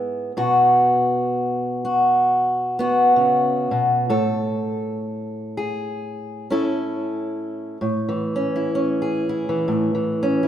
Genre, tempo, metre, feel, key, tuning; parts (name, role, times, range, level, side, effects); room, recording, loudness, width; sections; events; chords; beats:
folk, solo fingerstyle acoustic guitar; 64 BPM; 4/4; swing 58% on 8ths; A major; A4 = 439 Hz
fingerpicked steel-string acoustic guitar; solo; 0.0-10.5 s; G#2 to A4; -19 LUFS; equal
wet concert hall reverb, RT60 2.1 s; recorded in a church or concert hall; -18 LUFS; side -10 dB against mid
0.0-7.8 A section; 7.8-10.5 B section
0.4 B5; 4.1 A
| 0.35 1.29 2.22 3.15 | 4.08 5.02 5.95 6.88 | 7.81 8.74 9.67